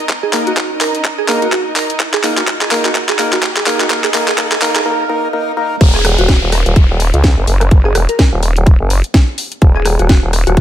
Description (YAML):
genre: bass house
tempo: 126 BPM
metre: 4/4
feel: swing 58% on 16ths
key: Eb minor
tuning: A4 = 441 Hz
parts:
  - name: riser, swell and downlifter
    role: sound effects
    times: 0.0-9.6 s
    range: none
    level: -24 LUFS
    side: equal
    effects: none
  - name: rich symphonic string section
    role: texture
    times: 0.0-4.9 s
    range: Eb4 to Eb5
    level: -23 LUFS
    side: right 2 dB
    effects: sidechain pumping
  - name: electronic kick drum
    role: drums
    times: 0.1-10.6 s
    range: none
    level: -10 LUFS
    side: equal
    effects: high-pass filter on kick
  - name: garage drum kit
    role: drums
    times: 0.1-10.6 s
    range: crash cymbal, handclaps, hi-hat, rim click, snare drum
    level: -17 LUFS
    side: equal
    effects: high-pass filter on snare, high-pass filter on hats, high-pass filter on cymbals
  - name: glassy wavetable pluck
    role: melody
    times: 0.2-10.6 s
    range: Gb4 to Bb4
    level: -20 LUFS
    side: right 2 dB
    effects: chorus, ping-pong delay
  - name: percussive organ stab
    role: stabs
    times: 0.3-5.8 s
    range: Bb3 to Bb4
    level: -18 LUFS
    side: left 1 dB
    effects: chorus, sidechain pumping, ping-pong delay
  - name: vowel-sweep wobble bass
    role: bass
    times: 5.8-10.6 s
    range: Eb1 to Db2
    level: -13 LUFS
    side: equal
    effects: chorus, tube saturation, sidechain pumping
room: light reverb, digital ambience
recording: high-pass filter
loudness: -11 LUFS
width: side -11 dB against mid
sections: 0.0-5.8 A section; 5.8-10.6 B section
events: build-up 0.0-5.8; drum fill 0.0-4.9; break 4.9-5.8; swell 4.9-5.8; drop 5.8-10.6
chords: 0.0 Eb5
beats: | 0.09 0.57 1.05 1.52 | 2.00 2.48 2.95 3.43 | 3.90 4.38 4.86 5.33 | 5.81 6.28 6.76 7.24 | 7.71 8.19 8.66 9.14 | 9.62 10.09 10.57